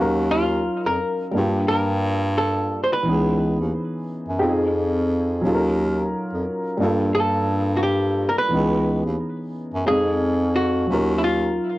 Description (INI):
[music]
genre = hip hop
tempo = 88 BPM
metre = 4/4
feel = swing 62% on 16ths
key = unclear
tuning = A4 = 440 Hz
[part]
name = archtop guitar, miked and amplified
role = melody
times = 0.0-11.7 s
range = E4 to C5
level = -23 LUFS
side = equal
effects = low-pass filter
[part]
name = dark upright piano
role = accompaniment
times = 0.0-11.8 s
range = Fb3 to F5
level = -23 LUFS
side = equal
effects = cassette tape, low-pass filter
[part]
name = clear bass clarinet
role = bass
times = 0.0-11.5 s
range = Db2 to G2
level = -23 LUFS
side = equal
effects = tube saturation
[sound]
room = little or no reverb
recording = dry, gritty hardware recording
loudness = -19 LUFS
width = side -17 dB against mid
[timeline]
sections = 0.0-11.8 A section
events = none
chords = 0.0 Ebm9; 1.3 Gm7; 3.0 Dbm9; 4.4 Fm7; 5.4 Ebm9; 6.8 Gm9; 8.5 Dbm9; 9.9 Fm7; 10.9 Ebm9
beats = 0.32 1.00 | 1.68 2.36 3.04 3.73 | 4.41 5.09 5.77 6.45 | 7.14 7.82 8.50 9.18 | 9.86 10.54 11.23